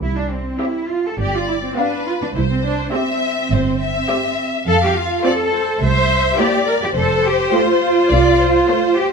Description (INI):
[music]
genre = quick classical-period movement for symphony orchestra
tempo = 104 BPM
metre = 4/4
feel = rubato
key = C major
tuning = A4 = 440 Hz
[part]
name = rich studio double bass section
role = bass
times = 0.0-8.6 s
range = F1 to F2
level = -21 LUFS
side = right 3 dB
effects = none
[part]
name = warm studio cello section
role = bass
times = 0.0-9.1 s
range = C4 to C5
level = -18 LUFS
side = right 1 dB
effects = none
[part]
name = dark studio violin section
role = melody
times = 0.6-9.1 s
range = C5 to F5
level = -27 LUFS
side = left 7 dB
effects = none
[part]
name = warm studio viola section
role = accompaniment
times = 0.6-9.1 s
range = A3 to G4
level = -23 LUFS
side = right 3 dB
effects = none
[part]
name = warm studio violin section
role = second line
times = 1.2-9.1 s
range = B4 to F5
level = -20 LUFS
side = left 4 dB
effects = none
[sound]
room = moderate recital hall reverb, RT60 1.9 s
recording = minimal, uncompressed stereo recording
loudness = -15 LUFS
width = side -5 dB against mid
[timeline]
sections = 0.0-9.1 A section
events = none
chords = 0.0 C; 1.2 G7; 2.4 C; 4.7 F; 5.8 C7; 7.0 F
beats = | 0.03 0.61 1.19 1.77 | 2.35 2.93 3.51 4.09 | 4.67 5.24 5.81 6.38 | 6.96 7.53 8.11 8.68